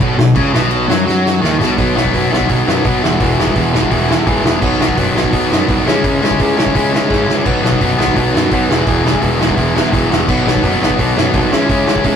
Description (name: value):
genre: punk rock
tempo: 169 BPM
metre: 4/4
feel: straight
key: B major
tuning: A4 = 440 Hz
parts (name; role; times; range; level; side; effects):
- crunchy overdriven guitar; riff; 0.0-12.2 s; B2 to E4; -19 LUFS; right 6 dB; none
- distorted electric guitar; riff; 0.0-12.2 s; E2 to C#4; -24 LUFS; right 2 dB; overdrive
- overdriven electric guitar; riff; 0.0-12.2 s; E2 to C#4; -15 LUFS; left 4 dB; none
- fuzz picked electric bass; bass; 0.0-12.2 s; E1 to B2; -20 LUFS; right 1 dB; overdrive
- loose indie drum kit; drums; 0.0-12.1 s; crash cymbal, hi-hat, kick drum, snare drum; -17 LUFS; equal; none
room: moderate booth ambience, RT60 0.3 s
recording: rough rehearsal-room recording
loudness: -11 LUFS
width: side -8 dB against mid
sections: 0.0-1.8 A section; 1.8-12.2 B section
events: drum fill 1.1-1.8, 7.1-7.5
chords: 0.0 B; 3.0 E; 4.6 B; 5.9 C#m; 7.5 B; 8.7 E; 10.3 B; 11.5 C#m